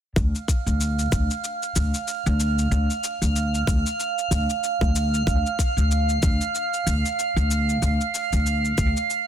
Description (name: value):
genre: organic downtempo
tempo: 94 BPM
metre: 4/4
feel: swing 57% on 16ths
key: D minor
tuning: A4 = 440 Hz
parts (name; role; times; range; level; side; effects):
- upright bass; bass; 0.2-8.9 s; D2; -22 LUFS; equal; sidechain pumping
- cabasa; drums; 0.2-9.2 s; none; -31 LUFS; left 4 dB; none
- electronic kick drum; drums; 0.2-8.9 s; none; -22 LUFS; equal; none
- drifting glass-harmonics texture; texture; 0.4-9.3 s; F5; -26 LUFS; right 5 dB; chorus, built-in reverb
room: little or no reverb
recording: dense, heavily limited modern master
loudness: -20 LUFS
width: side -10 dB against mid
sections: 0.2-9.3 A section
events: none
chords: 0.2 Dm